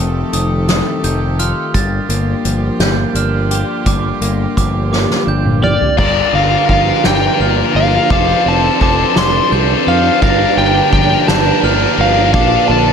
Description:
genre	post-rock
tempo	57 BPM (dotted quarters)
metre	6/8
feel	straight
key	G minor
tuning	A4 = 440 Hz
part	rich chamber string section	sustained chords	0.0-12.9 s	D3 to A4	-25 LUFS	right 2 dB	none
part	clean electric guitar	arpeggios	0.0-12.9 s	F2 to G4	-21 LUFS	left 3 dB	slapback echo
part	glockenspiel with brass mallets	arpeggios	0.0-12.9 s	D6 to A6	-24 LUFS	right 7 dB	slapback echo
part	growling fingered electric bass	bass	0.0-12.9 s	F1 to F2	-17 LUFS	equal	overdrive
part	soft-mallet drum kit	drums	0.3-12.9 s	crash cymbal, hi-hat, kick drum, ride cymbal, snare drum, toms	-16 LUFS	right 2 dB	none
part	overdriven slide guitar	melody	5.6-12.9 s	D5 to C6	-15 LUFS	left 1 dB	slapback echo
part	tight distorted guitar	riff	6.0-12.9 s	D4 to C5	-18 LUFS	left 15 dB	distortion
room	light reverb, studio reverb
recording	none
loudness	-11 LUFS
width	side -7 dB against mid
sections	0.0-6.0 A section; 6.0-12.9 B section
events	drum fill 4.9-6.0; build-up 6.0-12.9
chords	0.0 F7; 1.7 Gm7; 8.1 Dm7/F; 10.2 Gm7; 12.3 Bbmaj7

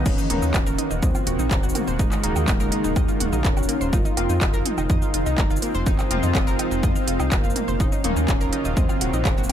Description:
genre	melodic techno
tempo	124 BPM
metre	4/4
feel	straight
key	Eb dorian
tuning	A4 = 440 Hz
part	lush unison pad	sustained chords	0.0-9.5 s	Db3 to Gb4	-32 LUFS	right 1 dB	chorus, sidechain pumping
part	wide unison pluck	arpeggios	0.0-9.5 s	Bb3 to Eb6	-31 LUFS	right 1 dB	sidechain pumping, ping-pong delay
part	sync-sweep polysynth	stabs	0.0-8.2 s	Eb3 to F4	-32 LUFS	left 4 dB	wide subtle chorus, sidechain pumping, ping-pong delay
part	round analog bass	bass	0.0-9.5 s	Eb1 to F2	-26 LUFS	equal	sidechain pumping
part	granular cloud pad	texture	0.0-9.5 s	Eb4 to F5	-32 LUFS	equal	built-in reverb, sidechain pumping
part	wide unison lead	melody	0.1-9.5 s	Ab3 to F4	-28 LUFS	equal	sidechain pumping, dub echo
part	electronic kick drum	drums	0.1-9.3 s	none	-22 LUFS	equal	none
part	techno drum kit	drums	0.1-9.5 s	crash cymbal, handclaps, hi-hat, shaker, toms, woodblock	-28 LUFS	equal	none
room	little or no reverb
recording	none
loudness	-19 LUFS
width	side -10 dB against mid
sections	0.0-9.5 A section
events	none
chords	0.1 Ebm7; 3.9 Fm; 7.8 Ebm7

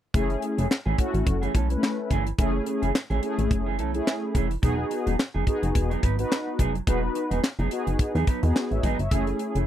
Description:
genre	early-eighties boogie funk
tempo	107 BPM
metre	4/4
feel	swing 56% on 16ths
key	F# dorian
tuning	A4 = 438 Hz
part	mellow synth brass	accompaniment	0.1-9.6 s	G#3 to E5	-28 LUFS	left 1 dB	chorus
part	mellow electric guitar	riff	0.1-9.7 s	E3 to B4	-31 LUFS	right 5 dB	wide subtle chorus
part	plucky analog bass	bass	0.1-9.6 s	E1 to E2	-26 LUFS	equal	none
part	tight funk drum kit	drums	0.1-9.7 s	handclaps, hi-hat, kick drum, snare drum	-25 LUFS	equal	none
room	little or no reverb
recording	dry, close 1970s-style studio recording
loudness	-23 LUFS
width	side -11 dB against mid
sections	0.1-9.7 A section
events	none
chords	0.1 F#m9; 4.6 Emaj9; 9.1 F#m9

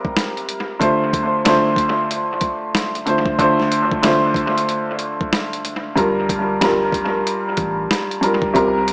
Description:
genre	hip hop, boom-bap hip-hop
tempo	93 BPM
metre	4/4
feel	swing 62% on 16ths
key	D minor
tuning	A4 = 440 Hz
part	clear upright piano	accompaniment	0.0-8.9 s	G2 to C5	-20 LUFS	equal	high-pass filter, low-pass filter, dub echo
part	boom bap sampler-style drum kit	drums	0.0-8.9 s	hi-hat, kick drum, snare drum	-26 LUFS	equal	dub echo
part	warm sub bass	bass	6.0-8.9 s	F1 to C2	-34 LUFS	equal	none
room	moderate echo chamber reverb, RT60 1.4 s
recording	echo-heavy mix, small speaker sound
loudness	-19 LUFS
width	mono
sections	0.0-8.9 A section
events	none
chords	0.0 C7sus4; 0.8 Dm7; 6.0 Gm7

